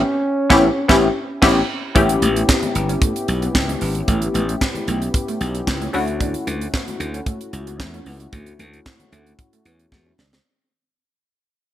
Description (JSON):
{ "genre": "early-eighties boogie funk", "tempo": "113 BPM", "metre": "4/4", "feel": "straight", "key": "D major", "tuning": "A4 = 441 Hz", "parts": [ { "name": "expressive synth lead", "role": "melody", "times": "0.0-1.4 s", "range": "C#4", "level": "-21 LUFS", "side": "right 1 dB", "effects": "chorus, slapback echo" }, { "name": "funky polysynth comp", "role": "accompaniment", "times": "0.5-10.2 s", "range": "A3 to G4", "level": "-20 LUFS", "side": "left 2 dB", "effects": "chorus" }, { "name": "slap bass", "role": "bass", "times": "0.5-10.4 s", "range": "G1 to E2", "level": "-23 LUFS", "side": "equal", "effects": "none" }, { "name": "tight funk drum kit", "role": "drums", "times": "0.5-10.4 s", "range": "crash cymbal, handclaps, hi-hat, kick drum, snare drum", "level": "-20 LUFS", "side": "right 1 dB", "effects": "gated reverb" }, { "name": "electric guitar at the edge of break-up", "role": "riff", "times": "2.0-10.3 s", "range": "A3 to D4", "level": "-31 LUFS", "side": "right 4 dB", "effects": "lush chorus" }, { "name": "congas", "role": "percussion", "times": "2.0-10.3 s", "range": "none", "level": "-32 LUFS", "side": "left 3 dB", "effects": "none" } ], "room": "light reverb", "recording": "none", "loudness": "-16 LUFS", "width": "side -12 dB against mid", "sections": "0.0-2.0 A section; 2.0-10.5 B section", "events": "band accent 0.0-2.0; fade-out 2.0-10.5; drum fill 9.9-10.5", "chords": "0.0 A9; 5.9 Dmaj9" }